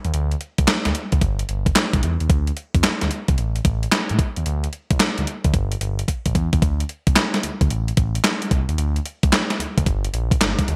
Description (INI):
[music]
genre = R&B, new jack swing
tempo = 111 BPM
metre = 4/4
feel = swing 66% on 16ths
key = unclear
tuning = A4 = 440 Hz
[part]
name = smooth gliding synth bass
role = bass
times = 0.0-10.8 s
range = G1 to A2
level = -25 LUFS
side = equal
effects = none
[part]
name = crisp 8-bit digital drum machine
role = drums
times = 0.0-10.8 s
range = handclaps, hi-hat, kick drum, snare drum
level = -21 LUFS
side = equal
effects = overdrive, gated reverb
[sound]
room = light reverb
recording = bright 1980s-style digital production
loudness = -21 LUFS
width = mono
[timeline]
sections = 0.0-6.6 A section; 6.6-10.8 B section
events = drum fill 6.1-6.6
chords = none